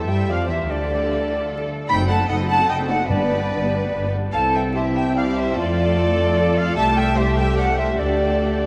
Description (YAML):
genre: quick classical-period movement for symphony orchestra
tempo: 148 BPM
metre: 3/4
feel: rubato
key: unclear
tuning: A4 = 438 Hz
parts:
  - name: warm studio violin section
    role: melody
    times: 0.0-8.7 s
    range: D5 to B5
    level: -32 LUFS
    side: equal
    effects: none
  - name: mellow French horn section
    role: sustained chords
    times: 0.0-8.7 s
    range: D3 to G4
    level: -30 LUFS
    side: equal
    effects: none
  - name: rich studio cello section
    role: bass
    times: 0.0-8.7 s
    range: D4 to B4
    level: -32 LUFS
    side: equal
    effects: none
  - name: rich studio double bass section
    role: bass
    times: 0.0-8.7 s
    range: F#1 to G2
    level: -26 LUFS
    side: equal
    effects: none
  - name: clear studio violin section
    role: second line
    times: 0.1-8.7 s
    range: A4 to G5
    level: -33 LUFS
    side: equal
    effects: none
  - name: silver concert flute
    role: second line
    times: 0.1-8.7 s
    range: D5 to B5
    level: -25 LUFS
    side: equal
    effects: none
  - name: rich studio viola section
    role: accompaniment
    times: 0.1-8.7 s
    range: D3 to G4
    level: -30 LUFS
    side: equal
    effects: none
  - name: timpani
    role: percussion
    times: 3.1-3.7 s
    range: G2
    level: -32 LUFS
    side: equal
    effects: none
room: wet cathedral reverb, RT60 6.5 s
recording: in a vast, echoing space, vinyl crackle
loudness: -20 LUFS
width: mono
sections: 0.0-8.7 A section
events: none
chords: 0.0 Fmaj13; 0.7 D5; 1.9 F#dim7; 3.1 G; 4.3 C; 5.6 Dm/F; 6.8 Am7/C; 8.0 Dsus4